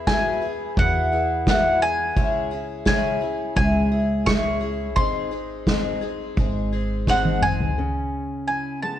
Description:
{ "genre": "indie folk with a building arrangement", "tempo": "86 BPM", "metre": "4/4", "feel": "straight", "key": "C# minor", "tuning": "A4 = 440 Hz", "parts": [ { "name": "bowl-back mandolin", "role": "melody", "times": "0.0-9.0 s", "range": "F#5 to C#6", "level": "-24 LUFS", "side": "right 1 dB", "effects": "none" }, { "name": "picked twelve-string acoustic guitar", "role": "accompaniment", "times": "0.0-7.8 s", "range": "G#2 to G#4", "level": "-26 LUFS", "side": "left 3 dB", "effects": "none" }, { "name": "upright bass", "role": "bass", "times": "0.0-7.7 s", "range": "G#1 to E2", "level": "-26 LUFS", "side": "equal", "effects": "none" }, { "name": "soft-mallet drum kit", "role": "drums", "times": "0.1-7.8 s", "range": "kick drum, snare drum, toms", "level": "-23 LUFS", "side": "equal", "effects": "none" }, { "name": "fingerpicked steel-string acoustic guitar", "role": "accompaniment", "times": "7.8-9.0 s", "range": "C#3 to E4", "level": "-30 LUFS", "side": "equal", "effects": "none" } ], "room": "light reverb", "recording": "worn, warbling old tape, cassette tape, warbly pitch drift", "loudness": "-20 LUFS", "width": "side -11 dB against mid", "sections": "0.0-7.8 A section; 7.8-9.0 B section", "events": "drum fill 7.1-7.8", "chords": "0.0 Eadd9; 2.2 C#m; 5.0 G#; 7.8 C#m" }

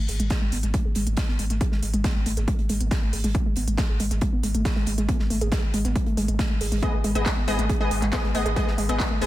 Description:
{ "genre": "driving peak-time techno", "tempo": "138 BPM", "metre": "4/4", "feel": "straight", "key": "G# phrygian", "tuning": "A4 = 441 Hz", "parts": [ { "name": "warbly dusty pluck", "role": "riff", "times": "0.0-9.2 s", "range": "G#3 to G#4", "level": "-28 LUFS", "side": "equal", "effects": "chorus, tube saturation, cassette tape, sidechain pumping, dub echo" }, { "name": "warm sub bass", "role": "bass", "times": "0.0-9.3 s", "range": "G#1", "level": "-27 LUFS", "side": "equal", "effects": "tube saturation, sidechain pumping, low-pass filter" }, { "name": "gated 80s drum kit", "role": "drums", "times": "0.1-9.3 s", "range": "hi-hat, snare drum", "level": "-37 LUFS", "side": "right 1 dB", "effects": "sidechain pumping on hats, high-pass filter on hats, small room ambience, high-pass filter on snare, high-pass filter on room, dub echo" }, { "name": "techno drum kit", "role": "drums", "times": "0.1-9.3 s", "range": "handclaps, hi-hat", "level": "-33 LUFS", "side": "equal", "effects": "overdrive, small room ambience, dub echo" }, { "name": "electronic kick drum", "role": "drums", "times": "0.3-9.1 s", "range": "none", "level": "-25 LUFS", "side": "equal", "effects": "overdrive, small room ambience" }, { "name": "rave stab", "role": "stabs", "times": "6.8-9.3 s", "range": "B3 to D#5", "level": "-27 LUFS", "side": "left 2 dB", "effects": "chorus, built-in reverb, sidechain pumping, dub echo" } ], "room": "light reverb", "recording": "echo-heavy mix", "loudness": "-22 LUFS", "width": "side -15 dB against mid", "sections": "0.0-9.3 A section", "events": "filter sweep on synth arpeggio sound 0.0-9.3", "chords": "0.0 G#m" }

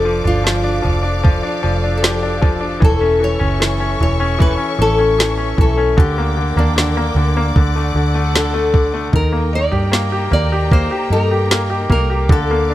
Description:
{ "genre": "pop ballad", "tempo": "76 BPM", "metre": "4/4", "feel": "straight", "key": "unclear", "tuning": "A4 = 440 Hz", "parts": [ { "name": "nylon-string guitar", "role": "melody", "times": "0.0-12.7 s", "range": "D4 to D5", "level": "-20 LUFS", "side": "left 2 dB", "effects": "none" }, { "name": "bright grand piano", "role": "accompaniment", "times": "0.0-12.7 s", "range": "D3 to G4", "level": "-20 LUFS", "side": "left 2 dB", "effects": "none" }, { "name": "warm studio string section", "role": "sustained chords", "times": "0.0-12.7 s", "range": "Bb3 to D6", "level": "-26 LUFS", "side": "equal", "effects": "none" }, { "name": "vintage muted fingered electric bass", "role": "bass", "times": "0.0-12.7 s", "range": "E1 to G2", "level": "-18 LUFS", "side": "equal", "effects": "none" }, { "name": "smooth R&B drum kit", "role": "drums", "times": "0.3-12.5 s", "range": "kick drum, snare drum, toms", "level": "-15 LUFS", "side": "right 1 dB", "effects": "none" } ], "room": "small room ambience", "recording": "none", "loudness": "-13 LUFS", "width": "side -14 dB against mid", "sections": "0.0-12.7 A section", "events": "none", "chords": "0.0 Dm/F; 2.8 A/E; 6.0 Gm/D; 7.6 D; 9.1 Eb" }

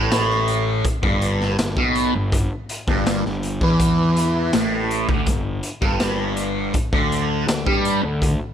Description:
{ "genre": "psychedelic rock", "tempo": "81 BPM", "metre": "4/4", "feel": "straight", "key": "unclear", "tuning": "A4 = 442 Hz", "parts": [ { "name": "fuzz guitar", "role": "riff", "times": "0.0-8.3 s", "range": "G2 to G3", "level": "-20 LUFS", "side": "equal", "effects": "distortion, phaser" }, { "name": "fuzz picked electric bass", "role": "bass", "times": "0.0-8.4 s", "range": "G1 to G2", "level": "-25 LUFS", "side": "equal", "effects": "overdrive" }, { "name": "raw garage drum kit", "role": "drums", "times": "0.1-8.4 s", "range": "hi-hat, kick drum, snare drum", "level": "-23 LUFS", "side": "equal", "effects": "none" } ], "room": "light reverb, studio ambience", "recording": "none", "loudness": "-18 LUFS", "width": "side -9 dB against mid", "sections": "0.0-8.5 A section", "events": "none", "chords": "0.0 A5; 0.8 G5; 6.7 D5" }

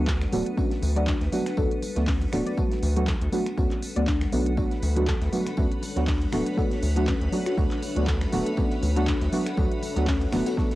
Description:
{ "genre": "deep house", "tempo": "120 BPM", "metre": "4/4", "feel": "swing 55% on 16ths", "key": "D major", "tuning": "A4 = 440 Hz", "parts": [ { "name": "deep mellow chord stab", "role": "stabs", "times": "0.0-10.7 s", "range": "F#3 to F#4", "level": "-28 LUFS", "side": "right 1 dB", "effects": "chorus, sidechain pumping, cassette tape, tape echo" }, { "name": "round analog bass", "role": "bass", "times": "0.0-10.4 s", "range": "D1 to D2", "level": "-25 LUFS", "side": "equal", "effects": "tube saturation, sidechain pumping" }, { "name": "granular cloud pad", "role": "texture", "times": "0.0-10.8 s", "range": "D4 to F#5", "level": "-36 LUFS", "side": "equal", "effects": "built-in reverb, sidechain pumping, cassette tape" }, { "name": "soft round pluck", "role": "arpeggios", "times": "0.1-10.7 s", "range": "C#4 to D5", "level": "-34 LUFS", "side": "left 5 dB", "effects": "wide subtle chorus, sidechain pumping, cassette tape, tape echo" }, { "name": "deep house drum kit", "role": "drums", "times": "0.1-10.8 s", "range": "finger snaps, handclaps, hi-hat", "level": "-36 LUFS", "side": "equal", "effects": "none" }, { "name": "electronic kick drum", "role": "drums", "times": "0.1-10.7 s", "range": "none", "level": "-27 LUFS", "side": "equal", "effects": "none" }, { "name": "modern studio drum kit", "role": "drums", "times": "0.1-10.8 s", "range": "hi-hat, snare drum, tambourine", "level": "-46 LUFS", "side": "equal", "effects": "sidechain pumping on hats, high-pass filter on hats, high-pass filter on snare, sidechain pumping on perc, high-pass filter on perc, high-pass filter on room" }, { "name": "congas", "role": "percussion", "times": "0.2-10.7 s", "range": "none", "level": "-39 LUFS", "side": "left 6 dB", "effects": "none" }, { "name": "deep dark ambient pad", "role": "sustained chords", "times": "7.0-10.8 s", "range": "F#4 to E5", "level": "-40 LUFS", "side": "right 1 dB", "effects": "none" }, { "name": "string machine, violins", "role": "texture", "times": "4.6-10.8 s", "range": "B4 to B5", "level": "-42 LUFS", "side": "equal", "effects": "ensemble chorus, sidechain pumping, cassette tape" } ], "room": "light reverb", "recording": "home recording on cassette", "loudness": "-22 LUFS", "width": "side -16 dB against mid", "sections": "0.0-10.8 A section", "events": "none", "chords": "0.0 D6" }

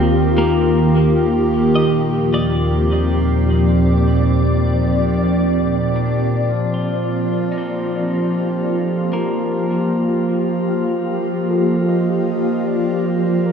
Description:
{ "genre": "ambient", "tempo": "77 BPM", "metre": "3/4", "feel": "straight", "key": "Eb major", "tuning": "A4 = 440 Hz", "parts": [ { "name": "glassy FM pad", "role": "sustained chords", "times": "0.0-13.5 s", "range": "Bb2 to D5", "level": "-16 LUFS", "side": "equal", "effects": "ensemble chorus, built-in reverb" }, { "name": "twelve-string electric guitar", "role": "arpeggios", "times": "0.0-11.5 s", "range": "Bb3 to Eb5", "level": "-26 LUFS", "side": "left 1 dB", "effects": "diffuse ambient delay" }, { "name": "deep rumbling drone", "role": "bass", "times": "0.0-6.4 s", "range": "Eb2", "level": "-21 LUFS", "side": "equal", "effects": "built-in reverb" }, { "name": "hand-pumped harmonium", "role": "drone", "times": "0.0-13.5 s", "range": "Eb3 to G4", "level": "-26 LUFS", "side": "equal", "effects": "none" }, { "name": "breathy flute-like synth lead", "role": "melody", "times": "6.5-13.5 s", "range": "F4 to Eb5", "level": "-33 LUFS", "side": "equal", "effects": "none" } ], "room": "wet plate reverb, RT60 3.7 s", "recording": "dreamy mix soaked in reverb", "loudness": "-15 LUFS", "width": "side -7 dB against mid", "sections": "0.0-6.4 A section; 6.4-13.5 B section", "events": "fade-out on clean electric guitar 0.0-6.4", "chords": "0.0 Ebmaj7; 6.4 Ebmaj9#11" }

